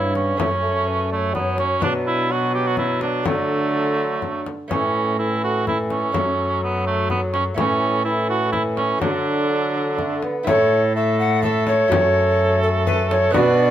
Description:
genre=classical, renaissance-style consort dance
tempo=126 BPM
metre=3/4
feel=straight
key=A major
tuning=A4 = 440 Hz
part: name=alto recorder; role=melody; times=0.0-13.7 s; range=A4 to F#5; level=-24 LUFS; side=left 1 dB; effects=none
part: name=warm cor anglais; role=second line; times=0.0-13.7 s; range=A3 to A4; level=-23 LUFS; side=right 4 dB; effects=none
part: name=lute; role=accompaniment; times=0.0-13.7 s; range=F#2 to F#4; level=-29 LUFS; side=right 2 dB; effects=none
part: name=warm bassoon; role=accompaniment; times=0.0-13.7 s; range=E3 to B3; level=-25 LUFS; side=left 2 dB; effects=none
part: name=rich cello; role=bass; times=0.0-13.7 s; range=F#2 to D3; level=-24 LUFS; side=right 1 dB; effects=none
part: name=frame drum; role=percussion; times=0.2-13.6 s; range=none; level=-27 LUFS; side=left 5 dB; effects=none
room=light reverb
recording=close, detailed microphones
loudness=-18 LUFS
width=side -11 dB against mid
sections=0.0-10.5 A section; 10.5-13.7 A section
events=none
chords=0.4 F#m; 1.8 Bm; 3.3 D; 4.7 A; 6.1 F#m; 7.6 A; 9.0 D; 10.5 A; 11.9 F#m

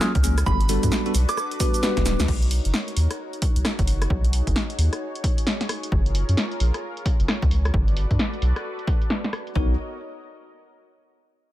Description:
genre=UK garage, two-step garage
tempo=132 BPM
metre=4/4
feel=swing 62% on 16ths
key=unclear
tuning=A4 = 442 Hz
part: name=soft synth bell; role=melody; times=0.0-2.2 s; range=B5 to E#6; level=-30 LUFS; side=right 4 dB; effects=chorus, digital delay
part: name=warm analog pad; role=sustained chords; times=0.0-9.8 s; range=C#4 to D#5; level=-34 LUFS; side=left 2 dB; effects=wide subtle chorus, sidechain pumping
part: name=bell-like tine electric piano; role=stabs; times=0.0-2.3, 9.6-9.7 s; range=F#3 to C#5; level=-27 LUFS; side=left 1 dB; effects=phaser, tape echo
part: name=punchy analog drum machine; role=drums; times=0.0-9.5 s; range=crash cymbal, hi-hat, rim click, shaker, snare drum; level=-27 LUFS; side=equal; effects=low-pass filter on perc, low-pass filter on hats, low-pass filter on snare, low-pass filter on cymbals
part: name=soft dub sub bass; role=bass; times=0.2-9.8 s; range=D1 to G2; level=-21 LUFS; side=equal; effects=tube saturation
part: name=electronic kick drum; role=drums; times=0.2-9.7 s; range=none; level=-24 LUFS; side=equal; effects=none
room=little or no reverb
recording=none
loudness=-20 LUFS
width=side -14 dB against mid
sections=0.0-2.3 A section; 2.3-9.6 B section; 9.6-11.4 C section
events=drop 0.0-2.3; drum fill 2.1; filter sweep on drum 2.3-9.6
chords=0.5 Gmaj9; 2.3 Bmaj9; 5.9 F#maj9; 7.7 Gmaj9; 9.6 Bmaj9

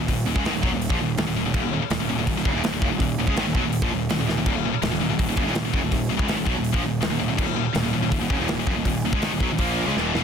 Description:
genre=heavy metal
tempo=164 BPM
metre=4/4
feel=straight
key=Eb minor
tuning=A4 = 440 Hz
part: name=high-gain distorted guitar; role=riff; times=0.0-10.2 s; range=Eb2 to Bb3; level=-27 LUFS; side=right 10 dB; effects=distortion
part: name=scooped high-gain guitar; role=riff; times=0.0-10.2 s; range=Eb2 to Bb3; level=-26 LUFS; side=left 12 dB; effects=distortion
part: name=fuzz picked electric bass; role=bass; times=0.0-10.2 s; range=Eb1 to Db2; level=-28 LUFS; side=equal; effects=overdrive
part: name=modern studio drum kit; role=drums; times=0.1-10.2 s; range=crash cymbal, hi-hat, kick drum, snare drum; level=-26 LUFS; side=equal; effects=none
room=studio reverb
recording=dense, heavily limited modern master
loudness=-21 LUFS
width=side -7 dB against mid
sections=0.0-10.2 A section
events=drum fill 4.3, 10.0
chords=0.0 Ebm

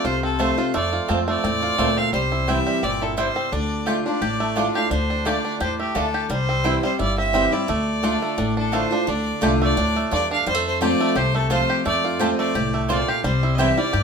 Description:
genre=bluegrass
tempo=173 BPM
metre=4/4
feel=swing 54% on 8ths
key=D minor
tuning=A4 = 440 Hz
part: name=clear fiddle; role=melody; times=0.0-14.0 s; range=G4 to F5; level=-24 LUFS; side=right 1 dB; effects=none
part: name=picked steel-string acoustic guitar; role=accompaniment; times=0.0-14.0 s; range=F2 to F4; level=-25 LUFS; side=left 1 dB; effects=none
part: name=bluegrass banjo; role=arpeggios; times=0.0-14.0 s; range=G3 to G4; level=-26 LUFS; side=right 2 dB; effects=none
part: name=upright bass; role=bass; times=0.0-14.0 s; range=G1 to G2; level=-26 LUFS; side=left 1 dB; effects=none
part: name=mandolin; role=stabs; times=0.4-13.7 s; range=A3 to A5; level=-26 LUFS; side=right 3 dB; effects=none
room=moderate studio reverb, RT60 0.8 s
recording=minimal, uncompressed stereo recording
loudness=-19 LUFS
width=side -6 dB against mid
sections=0.0-9.1 A section; 9.1-14.0 A section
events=none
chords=0.0 F; 2.1 C; 3.5 Dm; 6.3 C; 7.7 Dm; 10.5 F; 13.2 C

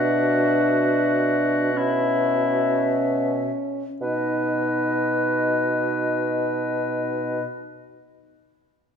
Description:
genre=classical, slow romantic movement for wind quintet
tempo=25-35 BPM (dotted quarters)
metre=6/8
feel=rubato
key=unclear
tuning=A4 = 441 Hz
part: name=mellow concert flute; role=melody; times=0.0-7.4 s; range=D#5 to E5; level=-27 LUFS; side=left 7 dB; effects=none
part: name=warm oboe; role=second line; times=0.0-7.4 s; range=E4 to B4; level=-27 LUFS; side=left 1 dB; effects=none
part: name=mellow French horn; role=accompaniment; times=0.0-7.4 s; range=C#4 to D#4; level=-25 LUFS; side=right 1 dB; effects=none
part: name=warm clarinet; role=accompaniment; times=0.0-7.4 s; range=F#4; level=-34 LUFS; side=right 10 dB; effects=none
part: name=dark bassoon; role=bass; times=0.0-7.4 s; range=B2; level=-26 LUFS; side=right 1 dB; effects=none
room=moderate scoring stage reverb, RT60 1.9 s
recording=minimal, uncompressed stereo recording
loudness=-20 LUFS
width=side -7 dB against mid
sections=0.0-4.0 A section; 4.0-8.2 B section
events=slowing down 0.0-4.0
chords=0.0 F#5/B; 4.0 B

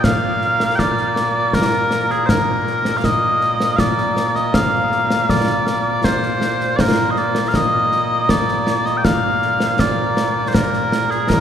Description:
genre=scottish traditional, Scottish pipe music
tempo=80 BPM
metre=3/4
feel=straight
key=Bb major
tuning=A4 = 440 Hz
part: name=mellow small bagpipes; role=melody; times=0.0-11.4 s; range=Bb2 to G5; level=-17 LUFS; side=equal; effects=none
part: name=concert snare drum and concert bass drum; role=drums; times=0.0-11.4 s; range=none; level=-20 LUFS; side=equal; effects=none
room=wet church reverb, RT60 3.6 s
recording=recorded in a church or concert hall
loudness=-15 LUFS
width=side -9 dB against mid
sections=0.0-11.4 A section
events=none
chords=none

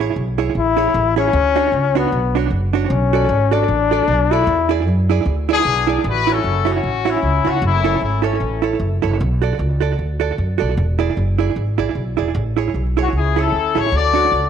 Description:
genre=ska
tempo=153 BPM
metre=4/4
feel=swing 58% on 8ths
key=A major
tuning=A4 = 440 Hz
part: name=hollow-body jazz guitar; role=accompaniment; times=0.0-14.4 s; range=D4 to D5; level=-21 LUFS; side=right 11 dB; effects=slapback echo
part: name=upright bass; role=bass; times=0.0-14.5 s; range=E1 to F#2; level=-19 LUFS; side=equal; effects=none
part: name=breathy trombone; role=melody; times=0.6-4.7 s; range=B3 to E4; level=-17 LUFS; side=left 8 dB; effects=none
part: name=warm horn section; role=melody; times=5.5-9.0, 13.0-14.5 s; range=E3 to D5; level=-18 LUFS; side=left 7 dB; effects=none
room=moderate echo chamber reverb, RT60 1.8 s, small room reverb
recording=1960s-style stereo with parts hard left and right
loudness=-15 LUFS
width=side -8 dB against mid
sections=0.0-6.0 A section; 6.0-14.5 B section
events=trombone solo 0.0-6.0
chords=0.0 Amaj7; 1.3 Dmaj7; 2.9 Bm7; 4.5 E7; 6.0 A6; 7.6 F#m7; 9.2 Bm7; 10.8 E7; 12.3 Amaj7; 13.9 Dmaj7

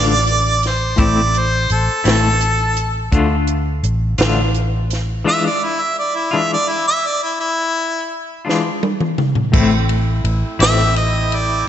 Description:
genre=slow blues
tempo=56 BPM (dotted quarters)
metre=12/8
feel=straight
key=A harmonic minor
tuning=A4 = 439 Hz
part: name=clear harmonica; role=melody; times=0.0-11.7 s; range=E4 to E5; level=-17 LUFS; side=equal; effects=slapback echo
part: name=semi-hollow electric guitar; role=accompaniment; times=0.0-10.8 s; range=A2 to F4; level=-21 LUFS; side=left 4 dB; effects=tremolo, slapback echo
part: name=vintage muted fingered electric bass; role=bass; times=0.0-11.6 s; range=A1 to D2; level=-18 LUFS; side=equal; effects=none
part: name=compact cocktail drum kit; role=drums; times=0.3-11.5 s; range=crash cymbal, hi-hat, kick drum, ride cymbal, snare drum, toms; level=-20 LUFS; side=right 1 dB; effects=none
part: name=mellow horn section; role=sustained chords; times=9.5-11.7 s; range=A3 to E4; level=-28 LUFS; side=right 2 dB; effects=none
room=moderate lush hall reverb, RT60 2.0 s, studio reverb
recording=big arena sound, nothing above 8.0 kHz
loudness=-14 LUFS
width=side -10 dB against mid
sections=0.0-9.5 A section; 9.5-11.7 B section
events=drum fill 8.5-9.5; harmonica solo 9.5-11.7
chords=0.0 Dm; 1.0 Am; 3.1 Dm; 5.3 E7b9; 9.5 Am

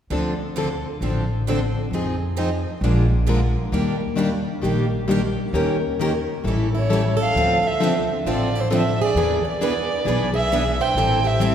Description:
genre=acoustic string swing (jazz manouche)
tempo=133 BPM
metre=4/4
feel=swing 65% on 8ths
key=D phrygian, D minor from 7.3 s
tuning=A4 = 440 Hz
part: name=picked acoustic archtop guitar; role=accompaniment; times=0.1-11.5 s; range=D3 to B4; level=-28 LUFS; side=right 4 dB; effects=none
part: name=picked plugged-in steel-string acoustic guitar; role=accompaniment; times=0.1-11.5 s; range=D3 to Bb4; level=-24 LUFS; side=left 3 dB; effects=none
part: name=upright bass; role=bass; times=0.1-11.5 s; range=A1 to F2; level=-24 LUFS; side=equal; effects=none
part: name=picked plugged-in steel-string acoustic guitar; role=second line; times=6.7-11.5 s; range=E4 to C5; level=-26 LUFS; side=right 3 dB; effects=none
part: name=dark violin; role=melody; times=6.8-11.5 s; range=C5 to G5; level=-22 LUFS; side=right 2 dB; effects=none
room=wet concert hall reverb, RT60 2.3 s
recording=recorded in a church or concert hall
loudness=-19 LUFS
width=side -9 dB against mid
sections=0.1-7.3 A section; 7.3-11.5 B section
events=none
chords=0.1 Dm7; 1.9 Fm7; 2.8 Bb7; 3.7 Ebmaj7; 5.5 Eb7; 6.4 A7; 7.3 Dm7; 9.2 E7; 11.0 Am7

